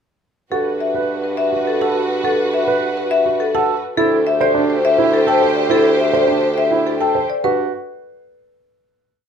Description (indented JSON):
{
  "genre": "classical, minimalist pattern music",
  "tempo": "104 BPM",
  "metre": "3/4",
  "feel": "straight",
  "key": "G major",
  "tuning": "A4 = 440 Hz",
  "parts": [
    { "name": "marimba with medium hard mallets", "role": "melody", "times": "0.5-7.7 s", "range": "A4 to G5", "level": "-18 LUFS", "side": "left 4 dB", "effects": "none" },
    { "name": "warm symphonic string section", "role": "sustained chords", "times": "0.5-7.3 s", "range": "F#4 to C5", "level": "-22 LUFS", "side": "left 1 dB", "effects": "none" },
    { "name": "dark concert grand piano", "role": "arpeggios", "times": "0.5-7.7 s", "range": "D4 to C5", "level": "-20 LUFS", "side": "right 6 dB", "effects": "none" },
    { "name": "mellow bassoon", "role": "bass", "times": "0.5-7.7 s", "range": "D2 to G2", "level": "-22 LUFS", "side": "right 3 dB", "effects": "none" }
  ],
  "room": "light reverb",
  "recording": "none",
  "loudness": "-14 LUFS",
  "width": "side -7 dB against mid",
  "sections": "0.5-7.4 A section; 7.4-9.2 final chord",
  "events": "none",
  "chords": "0.5 Gmaj9; 4.0 D7sus4; 7.4 Gmaj7(no3)"
}